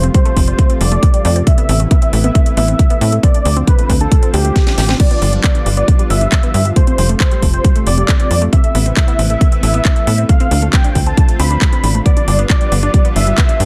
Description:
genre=uplifting trance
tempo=136 BPM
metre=4/4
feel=straight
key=A minor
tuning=A4 = 440 Hz
part: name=dense compressed supersaw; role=melody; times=0.0-13.7 s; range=G4 to B5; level=-22 LUFS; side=equal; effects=cassette tape, sidechain pumping, low-pass filter, tape echo
part: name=lush unison pad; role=sustained chords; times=0.0-13.7 s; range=C3 to F4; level=-27 LUFS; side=equal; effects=chorus, sidechain pumping
part: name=unison pluck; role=arpeggios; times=0.0-13.7 s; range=G3 to D4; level=-26 LUFS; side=equal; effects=phaser, sidechain pumping, tape echo
part: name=tight sequencer bass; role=bass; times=0.0-13.7 s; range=F1 to A2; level=-16 LUFS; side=equal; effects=sidechain pumping
part: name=house drum kit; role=drums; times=0.0-13.7 s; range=crash cymbal, handclaps, hi-hat, snare drum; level=-24 LUFS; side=equal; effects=sidechain pumping on hats, sidechain pumping on cymbals
part: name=electronic kick drum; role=drums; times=0.1-13.5 s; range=none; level=-14 LUFS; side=equal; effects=none
room=digital ambience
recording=none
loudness=-13 LUFS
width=mono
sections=0.0-13.7 A section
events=filter sweep on analog synth pad 0.0-13.7; drum fill 4.6-5.0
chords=0.0 Fadd9; 1.5 Amadd9; 3.2 Dm7; 5.0 G7; 6.8 Fadd9; 8.5 Amadd9; 10.3 Dm7; 12.1 G7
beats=0.14 0.59 1.03 | 1.47 1.91 2.35 2.79 | 3.23 3.67 4.12 4.56 | 5.00 5.44 5.88 6.32 | 6.76 7.20 7.64 8.09 | 8.53 8.97 9.41 9.85 | 10.29 10.73 11.17 11.62 | 12.06 12.50 12.94 13.38

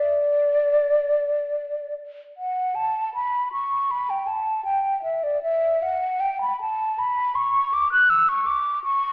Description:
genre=classical, baroque-style fantasia for unaccompanied flute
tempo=71-81 BPM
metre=3/4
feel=rubato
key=D major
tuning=A4 = 438 Hz
part: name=mellow hollow concert flute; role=solo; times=0.0-9.1 s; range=D5 to F#6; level=-20 LUFS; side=equal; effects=none
room=wet recital hall reverb, RT60 1.2 s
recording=recorded in a church or concert hall, telephone sound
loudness=-20 LUFS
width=side -23 dB against mid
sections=0.0-2.4 A section; 2.4-9.1 A section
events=none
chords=none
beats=0.71 1.54 | 2.37 3.14 3.90 | 4.66 5.42 6.20 | 6.97 7.72 8.47

